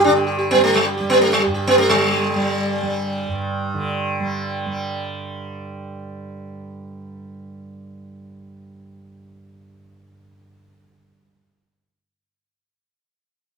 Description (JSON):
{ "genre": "indian classical", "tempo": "130 BPM", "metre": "7/4", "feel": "straight", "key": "unclear", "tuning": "A4 = 440 Hz", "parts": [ { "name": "sitar", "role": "melody", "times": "0.0-5.4 s", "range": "G3 to G4", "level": "-16 LUFS", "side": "right 1 dB", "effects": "none" }, { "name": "tanpura", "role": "drone", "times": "0.0-11.2 s", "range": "G2 to G3", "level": "-26 LUFS", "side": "right 2 dB", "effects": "none" } ], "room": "light reverb", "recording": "minimal, uncompressed stereo recording", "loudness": "-17 LUFS", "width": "side -5 dB against mid", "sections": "0.0-1.9 A section; 1.9-5.1 B section", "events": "speeding up 0.0-5.1", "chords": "none" }